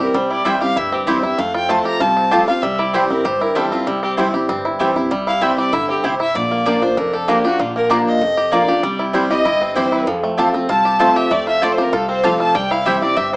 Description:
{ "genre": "bluegrass", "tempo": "193 BPM", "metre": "4/4", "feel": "straight", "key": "C mixolydian", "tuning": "A4 = 440 Hz", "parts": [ { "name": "bluegrass banjo", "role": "melody", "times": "0.0-13.4 s", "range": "D3 to G4", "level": "-21 LUFS", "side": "right 1 dB", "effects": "plate reverb" }, { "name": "clear fiddle", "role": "melody", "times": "0.0-13.4 s", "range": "E4 to Bb5", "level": "-19 LUFS", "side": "equal", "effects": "none" }, { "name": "picked steel-string acoustic guitar", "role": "accompaniment", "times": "0.0-13.4 s", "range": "F2 to F4", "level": "-20 LUFS", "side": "equal", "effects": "none" }, { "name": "upright bass", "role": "bass", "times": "0.1-13.4 s", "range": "F1 to F2", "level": "-31 LUFS", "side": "equal", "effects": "none" }, { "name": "mandolin", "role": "stabs", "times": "0.4-13.0 s", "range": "Bb3 to Bb5", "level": "-19 LUFS", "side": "right 1 dB", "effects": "none" }, { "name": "rich fiddle", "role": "second line", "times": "8.5-13.4 s", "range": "A4 to A5", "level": "-25 LUFS", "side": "equal", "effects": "none" } ], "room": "moderate small room reverb, RT60 0.5 s", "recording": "worn, warbling old tape, cassette tape, warbly pitch drift, small speaker sound", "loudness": "-14 LUFS", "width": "side -25 dB against mid", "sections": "0.0-13.4 A section", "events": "none", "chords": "0.0 C; 1.4 F; 2.6 C; 6.4 Bb; 8.8 C; 10.1 F; 12.6 C" }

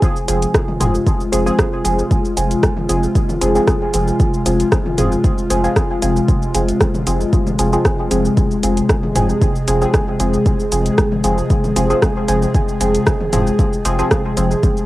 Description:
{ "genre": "dub techno", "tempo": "115 BPM", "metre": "4/4", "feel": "swing 53% on 16ths", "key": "F minor", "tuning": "A4 = 440 Hz", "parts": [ { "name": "airy breathy pad", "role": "sustained chords", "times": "0.0-14.9 s", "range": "C3 to Ab4", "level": "-20 LUFS", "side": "left 1 dB", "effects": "chorus, sidechain pumping, cassette tape" }, { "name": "filtered dub chord stab", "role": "stabs", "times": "0.0-14.5 s", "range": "F3 to Ab4", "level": "-20 LUFS", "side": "equal", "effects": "chorus, phaser, sidechain pumping, cassette tape, dub echo" }, { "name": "deep house drum kit", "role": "drums", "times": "0.0-14.9 s", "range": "cabasa, hi-hat, rim click", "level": "-20 LUFS", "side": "equal", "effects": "overdrive, small room ambience" }, { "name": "electronic kick drum", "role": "drums", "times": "0.0-14.7 s", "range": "none", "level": "-18 LUFS", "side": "equal", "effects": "overdrive, small room ambience" }, { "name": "soft dub sub bass", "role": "bass", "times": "0.3-14.5 s", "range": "F1", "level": "-20 LUFS", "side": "equal", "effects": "sidechain pumping" }, { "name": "electronic toms", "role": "percussion", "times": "0.7-13.4 s", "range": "none", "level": "-24 LUFS", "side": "left 1 dB", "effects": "sidechain pumping on toms, small room ambience, dub echo" } ], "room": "light reverb", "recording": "home recording on cassette", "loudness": "-14 LUFS", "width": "side -17 dB against mid", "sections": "0.0-14.9 A section", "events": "none", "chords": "0.0 Fm" }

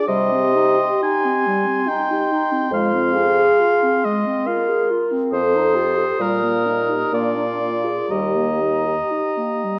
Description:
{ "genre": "classical, slow romantic movement for wind quintet", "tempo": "58-72 BPM", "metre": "3/4", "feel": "rubato", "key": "Eb major", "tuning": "A4 = 439 Hz", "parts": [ { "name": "concert flute", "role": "melody", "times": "0.0-9.8 s", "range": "Bb5 to Eb6", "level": "-30 LUFS", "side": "equal", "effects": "none" }, { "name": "clear oboe", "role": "second line", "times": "0.0-9.8 s", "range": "Bb4 to Ab5", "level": "-24 LUFS", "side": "equal", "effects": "none" }, { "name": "mellow French horn", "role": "accompaniment", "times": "0.0-9.8 s", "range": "D4 to Bb4", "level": "-25 LUFS", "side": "equal", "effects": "none" }, { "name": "mellow clarinet", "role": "accompaniment", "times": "0.0-9.8 s", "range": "G3 to A4", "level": "-28 LUFS", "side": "equal", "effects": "none" }, { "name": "mellow bassoon", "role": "bass", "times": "0.1-9.0 s", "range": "Eb2 to C3", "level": "-24 LUFS", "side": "equal", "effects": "none" } ], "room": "moderate scoring stage reverb, RT60 2.0 s", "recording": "worn, warbling old tape, cassette tape, warbly pitch drift", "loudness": "-19 LUFS", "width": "mono", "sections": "0.0-9.8 A section", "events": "none", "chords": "0.1 Cm; 2.7 Fm; 5.3 F7; 6.2 Eb/Bb; 7.1 Bb9; 8.1 Eb" }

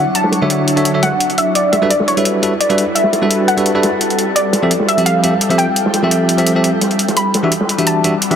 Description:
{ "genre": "liquid drum and bass", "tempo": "171 BPM", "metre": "4/4", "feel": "swing 53% on 16ths", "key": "unclear", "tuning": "A4 = 440 Hz", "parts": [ { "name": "soft round pluck", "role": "melody", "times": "0.0-8.4 s", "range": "C#5 to B5", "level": "-18 LUFS", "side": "equal", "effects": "analog chorus, dub echo" }, { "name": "bell-like tine electric piano", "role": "accompaniment", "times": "0.0-8.4 s", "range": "D3 to E5", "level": "-16 LUFS", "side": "equal", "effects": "fast stereo tremolo, tape echo" }, { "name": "glassy FM pad", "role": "sustained chords", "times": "0.0-8.4 s", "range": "F#3 to C#6", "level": "-19 LUFS", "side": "equal", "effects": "ensemble chorus, built-in reverb" }, { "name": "crunchy breakbeat drum kit", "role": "drums", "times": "0.1-8.4 s", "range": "ride cymbal, snare drum", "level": "-24 LUFS", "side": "right 1 dB", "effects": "none" }, { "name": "electronic hi-hat", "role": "drums", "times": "0.1-8.4 s", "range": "none", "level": "-19 LUFS", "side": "left 1 dB", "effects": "none" } ], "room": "moderate huge ambient reverb, RT60 5.0 s", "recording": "dense, heavily limited modern master", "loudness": "-12 LUFS", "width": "side -8 dB against mid", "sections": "0.0-8.4 A section", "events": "none", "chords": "0.0 Dmaj9; 1.6 Gmaj13; 4.4 Fmaj9; 7.2 Em9" }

